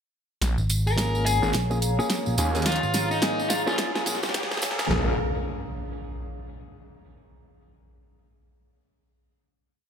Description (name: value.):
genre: glitch hop.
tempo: 107 BPM.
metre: 4/4.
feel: swing 60% on 16ths.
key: Bb minor pentatonic.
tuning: A4 = 443 Hz.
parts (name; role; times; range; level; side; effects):
dark analog pad; sustained chords; 1.3-5.2 s; Ab4 to Bb5; -34 LUFS; left 1 dB; chorus, phaser, sidechain pumping.
phased detuned saw bass; bass; 0.4-5.2 s; Ab1 to Eb2; -26 LUFS; equal; phaser, tube saturation.
dubstep drum kit; drums; 0.4-5.1 s; kick drum, snare drum; -32 LUFS; right 1 dB; high-pass filter on kick, studio reverb, high-pass filter on snare.
dubstep drum kit; drums; 0.4-5.0 s; hi-hat, rim click, snare drum; -30 LUFS; equal; studio reverb.
tambourine; percussion; 0.4-4.9 s; none; -34 LUFS; right 3 dB; none.
riser and impact; sound effects; 2.0-7.2 s; none; -33 LUFS; equal; none.
fingered electric bass; bass; 0.6-4.9 s; Ab1 to Bb1; -26 LUFS; equal; none.
dark smooth lead guitar; melody; 0.9-3.7 s; Eb4 to Bb4; -29 LUFS; left 1 dB; overdrive, ping-pong delay.
clean electric guitar; stabs; 1.0-5.1 s; Bb3 to Ab4; -31 LUFS; left 1 dB; sidechain pumping, low-pass filter, ping-pong delay.
room: moderate plate reverb, RT60 1.7 s, digital ambience.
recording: bright 1980s-style digital production, high-pass filter.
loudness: -22 LUFS.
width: side -7 dB against mid.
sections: 0.4-4.9 build; 4.9-7.2 final chord.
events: build-up 0.4-4.9; drum fill 0.4-4.9; filter sweep on clean electric guitar 0.4-4.9; filter sweep 0.4-4.9; riser 2.0-4.9.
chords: 0.4 Bbm7.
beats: | 0.42 0.98 1.54 2.10 | 2.66 3.23 3.79 4.35 | 4.91 5.47 6.03 6.59.